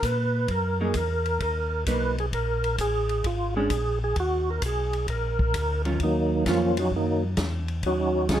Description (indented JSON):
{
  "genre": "soul jazz organ trio",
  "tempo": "131 BPM",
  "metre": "4/4",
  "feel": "swing 68% on 8ths",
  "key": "Eb minor",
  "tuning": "A4 = 440 Hz",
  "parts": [
    { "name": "percussive tonewheel organ", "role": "melody", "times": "0.0-8.4 s", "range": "Eb3 to B4", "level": "-26 LUFS", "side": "right 2 dB", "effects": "slow rotary speaker, overdrive, chorus vibrato, plate reverb" },
    { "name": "mellow tonewheel organ", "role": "bass", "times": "0.0-8.4 s", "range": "Ab1 to A#2", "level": "-28 LUFS", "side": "left 1 dB", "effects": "slow rotary speaker" },
    { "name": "vintage drum kit", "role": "drums", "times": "0.0-8.4 s", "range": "hi-hat, kick drum, ride cymbal, snare drum", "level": "-32 LUFS", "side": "left 1 dB", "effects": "none" },
    { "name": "vintage hollow-body jazz guitar", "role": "accompaniment", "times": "0.8-8.4 s", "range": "Eb3 to F4", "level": "-28 LUFS", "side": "right 1 dB", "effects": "none" }
  ],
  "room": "moderate studio reverb, RT60 0.5 s",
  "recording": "none",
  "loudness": "-23 LUFS",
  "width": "side -11 dB against mid",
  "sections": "0.0-6.0 A section; 6.0-8.4 B section",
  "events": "tonewheel organ solo 6.0-8.4",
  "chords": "0.0 Bmaj7; 2.3 Bb7(no3); 4.2 B6; 5.1 Bb; 6.0 Ebm9"
}